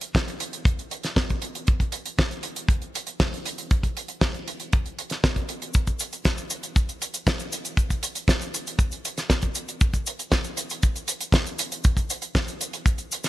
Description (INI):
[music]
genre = italo disco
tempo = 118 BPM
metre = 4/4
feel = straight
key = none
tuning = none
[part]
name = damped 70s drum kit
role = drums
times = 0.0-13.3 s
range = cabasa, hi-hat, snare drum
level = -27 LUFS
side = right 1 dB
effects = studio reverb
[part]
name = kick drum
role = drums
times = 0.1-13.0 s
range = none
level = -21 LUFS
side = equal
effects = studio reverb
[sound]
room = light reverb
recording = lossy compression artefacts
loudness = -23 LUFS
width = side -16 dB against mid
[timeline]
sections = 0.0-13.3 A section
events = none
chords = none